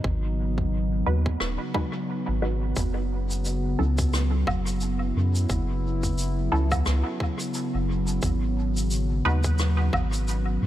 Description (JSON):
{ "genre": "ambient dub", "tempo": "88 BPM", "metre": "4/4", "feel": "swing 57% on 16ths", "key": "unclear", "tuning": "A4 = 440 Hz", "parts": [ { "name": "warbly tape-like pad", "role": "sustained chords", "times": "0.0-10.7 s", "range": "C#3 to E4", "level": "-30 LUFS", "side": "right 1 dB", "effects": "chorus, built-in reverb" }, { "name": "soft dub sub bass", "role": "bass", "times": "0.0-10.7 s", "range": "D#1 to G#2", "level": "-25 LUFS", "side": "equal", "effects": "none" }, { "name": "electronic kick drum", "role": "drums", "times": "0.0-10.1 s", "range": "none", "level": "-28 LUFS", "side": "equal", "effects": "none" }, { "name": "filtered dub chord stab", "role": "stabs", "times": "1.1-9.4 s", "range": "F#3 to B4", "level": "-32 LUFS", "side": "right 1 dB", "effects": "phaser, dub echo" }, { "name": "rim click, shaker and woodblock", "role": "drums", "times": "1.4-10.4 s", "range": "none", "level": "-33 LUFS", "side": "equal", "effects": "dub echo" } ], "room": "light reverb, studio reverb", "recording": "none", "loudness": "-23 LUFS", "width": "side -13 dB against mid", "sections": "0.0-10.7 A section", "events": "none", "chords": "0.0 G#m7; 2.8 F#7(no3); 8.2 G#m7" }